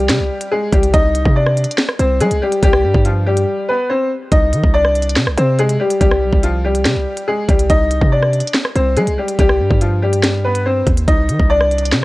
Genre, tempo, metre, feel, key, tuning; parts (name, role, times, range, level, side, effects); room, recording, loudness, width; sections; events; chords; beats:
hip hop, drill; 142 BPM; 4/4; half-time; C harmonic minor; A4 = 441 Hz
bright upright piano; melody; 0.0-11.9 s; F3 to Eb5; -16 LUFS; left 1 dB
hard-hitting 808-style bass; bass; 0.0-12.0 s; B1 to G3; -17 LUFS; equal
drill drum kit; drums; 0.1-12.0 s; hi-hat, kick drum, rim click, snare drum; -16 LUFS; equal
little or no reverb; worn, warbling old tape, cassette tape, warbly pitch drift; -12 LUFS; side -19 dB against mid
0.0-4.3 A section; 4.3-12.0 B section
break 3.5-4.3
0.0 C5; 4.3 Cm
0.09 0.52 | 0.94 1.36 1.78 2.21 | 2.63 3.05 3.47 3.90 | 4.32 4.74 5.16 5.58 | 6.01 6.43 6.85 7.28 | 7.70 8.12 8.54 8.97 | 9.39 9.81 10.23 10.66 | 11.08 11.50 11.92